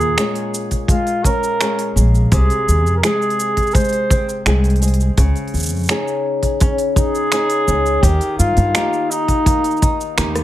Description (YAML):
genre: folktronica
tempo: 84 BPM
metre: 4/4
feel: straight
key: F minor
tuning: A4 = 440 Hz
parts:
  - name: warm flugelhorn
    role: melody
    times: 0.0-10.2 s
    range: Eb4 to C5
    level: -19 LUFS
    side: right 1 dB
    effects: vintage 12-bit sampler grit, digital delay
  - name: flamenco guitar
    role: arpeggios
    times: 0.0-10.4 s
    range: Bb2 to Ab4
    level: -21 LUFS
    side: left 2 dB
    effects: digital delay
  - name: upright bass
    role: bass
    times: 0.0-10.4 s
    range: Bb1 to G2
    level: -15 LUFS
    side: equal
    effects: none
  - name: organic electronic drum kit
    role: drums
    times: 0.0-10.4 s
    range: finger snaps, hi-hat, rim click, shaker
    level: -23 LUFS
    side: right 2 dB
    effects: none
  - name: kick drum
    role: drums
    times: 0.7-10.0 s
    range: none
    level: -17 LUFS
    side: equal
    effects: none
room: moderate studio ambience, RT60 0.5 s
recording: none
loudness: -14 LUFS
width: side -14 dB against mid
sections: 0.0-10.4 A section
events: none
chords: 0.0 Bbm7; 2.3 Fm/C (rootless); 5.2 Dbsus2; 8.0 Eb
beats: 0.18 0.89 1.61 | 2.32 3.04 3.75 4.46 | 5.18 5.89 6.61 7.32 | 8.04 8.75 9.46 10.18